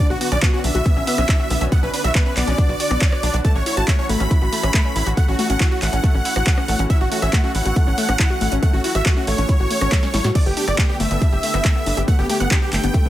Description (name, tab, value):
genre	uplifting trance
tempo	139 BPM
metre	4/4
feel	straight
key	unclear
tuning	A4 = 440 Hz
part	big supersaw lead	melody	0.0-13.1 s	F#4 to B5	-24 LUFS	right 1 dB	sidechain pumping, tape echo
part	analog string pad	sustained chords	0.0-13.1 s	D3 to G4	-29 LUFS	equal	ensemble chorus, sidechain pumping
part	wide unison pluck	arpeggios	0.0-13.1 s	A3 to C#5	-26 LUFS	left 3 dB	sidechain pumping, digital delay
part	tight sequencer bass	bass	0.1-13.1 s	G1 to A2	-21 LUFS	equal	sidechain pumping
part	punchy analog drum machine	drums	0.2-13.0 s	crash cymbal, handclaps, hi-hat, rim click, snare drum	-24 LUFS	right 1 dB	none
part	electronic kick drum	drums	0.4-13.0 s	none	-17 LUFS	equal	none
room	little or no reverb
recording	none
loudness	-16 LUFS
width	side -13 dB against mid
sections	0.0-13.1 A section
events	drum fill 9.9-10.4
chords	0.0 Bmadd9; 3.4 F#m7/A; 10.4 Gadd9